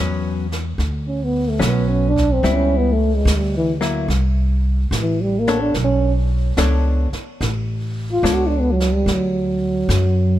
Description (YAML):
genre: jazz ballad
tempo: 72 BPM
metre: 4/4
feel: swing 67% on 8ths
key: B minor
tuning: A4 = 439 Hz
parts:
  - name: hollow-body jazz guitar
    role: accompaniment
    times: 0.0-8.7 s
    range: F#3 to C#5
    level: -24 LUFS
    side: left 4 dB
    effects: none
  - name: upright bass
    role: bass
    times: 0.0-10.4 s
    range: A1 to F#2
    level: -19 LUFS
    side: equal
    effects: none
  - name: jazz brush drum kit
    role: drums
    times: 0.5-10.4 s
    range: brushed snare drum, hi-hat, kick drum, snare drum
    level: -29 LUFS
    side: right 2 dB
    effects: none
  - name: trombone with bucket mute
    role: melody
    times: 1.1-10.4 s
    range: E3 to F#4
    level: -20 LUFS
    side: right 1 dB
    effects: none
room: little or no reverb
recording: none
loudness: -16 LUFS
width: side -13 dB against mid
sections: 0.0-10.4 A section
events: trombone solo 0.0-10.4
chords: 0.0 Gmaj7#11 (rootless); 2.4 C#m7b5; 4.1 Amadd9; 5.8 Bm9; 9.1 D